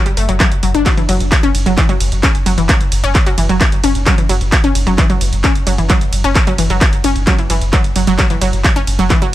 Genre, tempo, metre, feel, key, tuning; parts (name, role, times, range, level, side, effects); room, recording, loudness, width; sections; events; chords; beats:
driving peak-time techno; 131 BPM; 4/4; straight; A4 = 440 Hz
analog pluck; riff; 0.1-9.3 s; E3 to D4; -17 LUFS; equal; chorus, sidechain pumping, tape echo
saturated sub bass; bass; 0.1-9.3 s; F#1; -18 LUFS; equal; tube saturation, sidechain pumping, low-pass filter
punchy analog drum machine; drums; 0.1-9.3 s; handclaps, hi-hat, ride cymbal; -18 LUFS; right 1 dB; sidechain pumping on hats, sidechain pumping on cymbals
electronic kick drum; drums; 0.4-9.2 s; -14 LUFS; equal; overdrive
little or no reverb; -11 LUFS; side -14 dB against mid
0.0-9.3 A section
0.40 | 0.86 1.32 1.77 2.23 | 2.69 3.15 3.61 4.07 | 4.52 4.98 5.44 5.90 | 6.36 6.81 7.27 7.73 | 8.19 8.64 9.10